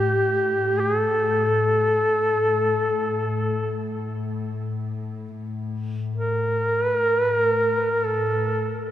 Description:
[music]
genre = caucasian folk, Caucasian lament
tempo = free time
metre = none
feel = none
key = unclear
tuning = A4 = 436 Hz
[part]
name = mellow duduk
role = melody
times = 0.0-8.8 s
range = G4 to Bb4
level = -21 LUFS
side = equal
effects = tape echo
[part]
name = dark studio string section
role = drone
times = 0.0-8.9 s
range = A2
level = -28 LUFS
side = left 2 dB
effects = none
[sound]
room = moderate church reverb, RT60 3.4 s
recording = none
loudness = -20 LUFS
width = side -12 dB against mid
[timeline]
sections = 0.0-8.9 A section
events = none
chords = none

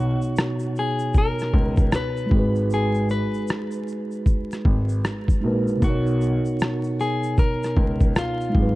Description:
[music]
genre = lo-fi hip hop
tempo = 77 BPM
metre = 4/4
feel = swing 62% on 16ths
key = unclear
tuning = A4 = 442 Hz
[part]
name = clean electric guitar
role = melody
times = 0.0-8.8 s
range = E#4 to B4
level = -28 LUFS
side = left 2 dB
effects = none
[part]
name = mellow tine electric piano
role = accompaniment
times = 0.0-8.8 s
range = B2 to C#5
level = -25 LUFS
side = right 1 dB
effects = fast stereo tremolo
[part]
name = dark grand piano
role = bass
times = 0.0-8.8 s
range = G#1 to C#2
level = -25 LUFS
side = equal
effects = none
[part]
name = tube shaker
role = percussion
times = 0.2-8.5 s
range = none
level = -51 LUFS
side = left 4 dB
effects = none
[part]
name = boom bap sampler-style drum kit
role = drums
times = 0.4-8.8 s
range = kick drum, rim click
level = -20 LUFS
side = equal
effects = none
[sound]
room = digital ambience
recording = dark, warm production, vinyl crackle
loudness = -20 LUFS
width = side -18 dB against mid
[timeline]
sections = 0.0-8.8 A section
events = break 0.0-8.8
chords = 0.0 Bmaj9; 2.3 G#m7; 5.8 Bmaj9

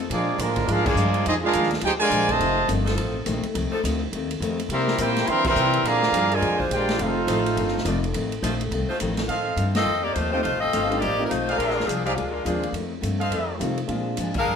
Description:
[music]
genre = jazz, big band swing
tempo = 209 BPM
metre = 4/4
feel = swing 61% on 8ths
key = F major, F mixolydian from 9.3 s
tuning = A4 = 440 Hz
[part]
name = clear saxophone section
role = sustained chords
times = 0.0-9.0 s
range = F3 to D5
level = -32 LUFS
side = left 1 dB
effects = none
[part]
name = upright bass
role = bass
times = 0.0-14.6 s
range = F1 to D3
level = -28 LUFS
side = equal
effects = none
[part]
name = clear trumpet section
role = melody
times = 0.1-2.7, 4.7-7.9 s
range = Ab3 to C6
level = -22 LUFS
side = right 1 dB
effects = none
[part]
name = bright trombone section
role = second line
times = 0.1-2.7, 4.7-7.9 s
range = C3 to G4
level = -27 LUFS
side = right 3 dB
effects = none
[part]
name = picked steel-string acoustic guitar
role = accompaniment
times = 0.1-14.6 s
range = F2 to E4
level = -29 LUFS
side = left 4 dB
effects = none
[part]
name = swinging big-band drum kit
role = drums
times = 0.1-14.4 s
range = crash cymbal, hi-hat, kick drum, ride cymbal, snare drum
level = -32 LUFS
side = equal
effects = none
[part]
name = warm trumpet section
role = stabs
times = 9.3-13.6 s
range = Ab4 to G5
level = -30 LUFS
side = right 2 dB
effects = none
[part]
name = clear saxophone section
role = melody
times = 9.8-14.6 s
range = Eb3 to F5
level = -24 LUFS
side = left 2 dB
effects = none
[part]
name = warm concert grand piano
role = accompaniment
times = 10.3-14.3 s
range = G3 to G4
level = -30 LUFS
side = equal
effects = none
[sound]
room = moderate large studio reverb, RT60 1.3 s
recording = none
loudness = -21 LUFS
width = side -7 dB against mid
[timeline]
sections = 0.0-9.3 A section; 9.3-14.6 B section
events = band accent 0.8, 5.4, 9.7, 14.3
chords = 0.1 Bb7; 2.4 F7; 4.7 C7; 5.8 Bb7; 7.0 F7; 11.6 Bb7; 12.7 F7; 13.9 Bb7

